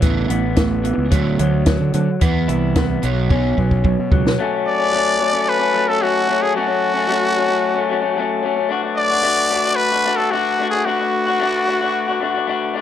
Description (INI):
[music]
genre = indie rock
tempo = 111 BPM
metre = 4/4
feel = straight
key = unclear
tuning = A4 = 440 Hz
[part]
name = crunchy overdriven guitar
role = riff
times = 0.0-4.4 s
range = B2 to E4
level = -20 LUFS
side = right 7 dB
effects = analog chorus, tape echo
[part]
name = electric guitar through a small old amp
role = riff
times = 0.0-12.8 s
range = E3 to F#4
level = -20 LUFS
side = left 8 dB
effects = none
[part]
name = fuzz fingered electric bass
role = bass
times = 0.0-4.2 s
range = A1 to D3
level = -20 LUFS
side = equal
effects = overdrive
[part]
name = compact cocktail drum kit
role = drums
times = 0.0-4.4 s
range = hi-hat, kick drum, snare drum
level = -18 LUFS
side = equal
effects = none
[part]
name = tonewheel organ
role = sustained chords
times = 4.4-12.8 s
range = A4 to D6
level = -28 LUFS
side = right 1 dB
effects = stopped rotary speaker
[part]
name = growling trumpet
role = melody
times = 4.7-12.7 s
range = F#4 to D5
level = -18 LUFS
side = equal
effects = tape echo
[sound]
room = light reverb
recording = dark, warm production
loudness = -15 LUFS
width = side -10 dB against mid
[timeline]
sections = 0.0-4.4 A section; 4.4-12.8 B section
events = drum fill 3.3-4.4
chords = 0.0 Asus2; 1.1 D; 2.2 E5; 3.0 Bsus2; 4.4 Dmaj7; 8.7 Bm7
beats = | 0.04 0.59 1.13 1.68 | 2.22 2.76 3.31 3.85 | 4.39 4.93 5.47 6.01 | 6.55 7.09 7.63 8.17 | 8.71 9.25 9.79 10.33 | 10.87 11.41 11.95 12.48